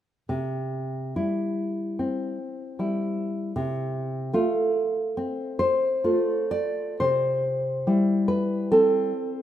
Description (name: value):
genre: romantic piece for solo classical guitar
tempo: 59-80 BPM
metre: 4/4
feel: rubato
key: C major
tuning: A4 = 443 Hz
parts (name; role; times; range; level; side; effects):
- nylon-string guitar; solo; 0.3-9.4 s; C3 to D5; -23 LUFS; equal; none
room: moderate lush hall reverb, RT60 2.4 s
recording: rough home demo mix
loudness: -23 LUFS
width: side -11 dB against mid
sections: 0.3-7.0 A section; 7.0-9.4 B section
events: none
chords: 0.3 C; 3.6 F/C; 7.0 C